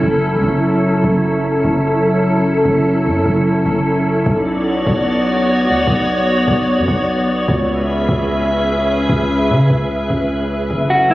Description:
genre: hip hop.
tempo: 149 BPM.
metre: 4/4.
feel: half-time.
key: F# minor.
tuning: A4 = 440 Hz.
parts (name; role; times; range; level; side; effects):
glassy FM pad; sustained chords; 0.0-11.1 s; F#3 to E5; -15 LUFS; equal; ensemble chorus, built-in reverb.
long sustained 808-style bass; bass; 0.0-11.1 s; F#1 to C#3; -18 LUFS; equal; none.
mellow electric guitar; melody; 10.9-11.1 s; E4 to F#4; -11 LUFS; equal; spring reverb, low-pass filter.
room: light reverb, digital ambience.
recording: recorded on a phone in the room, studio reverb, compression.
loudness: -13 LUFS.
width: side -16 dB against mid.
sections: 0.0-10.7 A section.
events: none.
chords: 0.0 F#m7; 4.3 Bmadd9; 7.5 C#m7.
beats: 0.23 0.64 | 1.04 1.44 1.84 2.25 | 2.65 3.05 3.46 3.86 | 4.26 4.66 5.07 5.47 | 5.87 6.28 6.68 7.08 | 7.48 7.89 8.29 8.69 | 9.09 9.50 9.90 10.30 | 10.70 11.11.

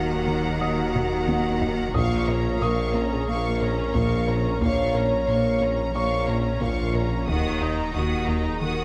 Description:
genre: cinematic, hybrid orchestral and electronic film score.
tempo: 90 BPM.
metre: 4/4.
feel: straight.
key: Eb minor.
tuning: A4 = 440 Hz.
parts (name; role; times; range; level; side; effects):
warm symphonic violin section; melody; 0.0-8.8 s; Bb5 to Eb6; -36 LUFS; equal; none.
rich symphonic violin section; second line; 0.0-8.8 s; Db5 to Gb5; -36 LUFS; equal; none.
clear symphonic viola section; accompaniment; 0.0-8.8 s; Bb3 to Gb4; -36 LUFS; equal; none.
dark French horn section; sustained chords; 0.0-8.8 s; Eb4 to Db5; -30 LUFS; equal; none.
deep rumbling drone; sustained chords; 0.6-8.8 s; F3 to Eb5; -40 LUFS; equal; none.
round analog bass; riff; 0.0-8.8 s; Eb2 to Bb3; -33 LUFS; equal; none.
punchy sub bass; bass; 0.0-8.8 s; Eb1 to Bb1; -34 LUFS; equal; none.
rich symphonic cello section; bass; 0.0-8.8 s; Bb2 to Eb3; -34 LUFS; equal; none.
warm symphonic double bass section; bass; 0.0-8.8 s; Bb1 to Eb2; -34 LUFS; equal; none.
warm tuba; bass; 0.0-8.8 s; Bb1 to Eb2; -33 LUFS; equal; none.
felt-muted upright piano; texture; 0.0-8.8 s; Db5 to Eb6; -38 LUFS; equal; tape echo.
soft round pluck; arpeggios; 0.3-8.5 s; Eb3 to Bb4; -38 LUFS; equal; none.
taiko ensemble; drums; 0.9-7.9 s; none; -33 LUFS; equal; none.
room: moderate scoring stage reverb, RT60 1.6 s.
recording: none.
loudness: -24 LUFS.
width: mono.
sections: 0.0-8.8 A section.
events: drum fill 0.9-1.9.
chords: 0.0 Ebm; 1.9 Bbm; 7.3 Ebm.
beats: 0.61 1.28 | 1.95 2.61 3.28 3.95 | 4.61 5.28 5.95 6.61 | 7.28 7.95 8.61.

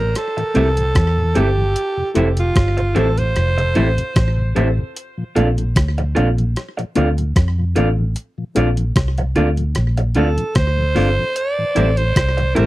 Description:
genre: lovers rock reggae.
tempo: 75 BPM.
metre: 4/4.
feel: swing 55% on 16ths.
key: unclear.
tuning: A4 = 439 Hz.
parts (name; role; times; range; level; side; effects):
growling alto saxophone; melody; 0.0-4.6, 10.2-12.7 s; F4 to D5; -21 LUFS; right 2 dB; tape echo.
mellow tonewheel organ; accompaniment; 0.0-12.6 s; F2 to E4; -24 LUFS; left 2 dB; slow rotary speaker.
vintage muted fingered electric bass; bass; 0.0-12.7 s; F1 to F2; -17 LUFS; equal; none.
gated 80s digital drum machine; drums; 0.2-12.7 s; hi-hat, kick drum, rim click; -19 LUFS; equal; slapback echo.
electric guitar through a small old amp; stabs; 0.4-12.7 s; C4 to F5; -21 LUFS; right 3 dB; none.
mellow tine electric piano; accompaniment; 0.5-12.7 s; C4 to A4; -22 LUFS; left 2 dB; slow stereo tremolo, slapback echo.
room: little or no reverb.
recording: dry, close 1970s-style studio recording.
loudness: -15 LUFS.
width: side -17 dB against mid.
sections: 0.0-12.7 A section.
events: none.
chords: 0.0 Am7; 1.8 Fmaj7; 5.0 Bbmaj7; 11.4 Am7.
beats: 0.15 0.96 | 1.76 2.56 3.36 4.16 | 4.96 5.76 6.56 7.36 | 8.16 8.96 9.76 10.56 | 11.36 12.16.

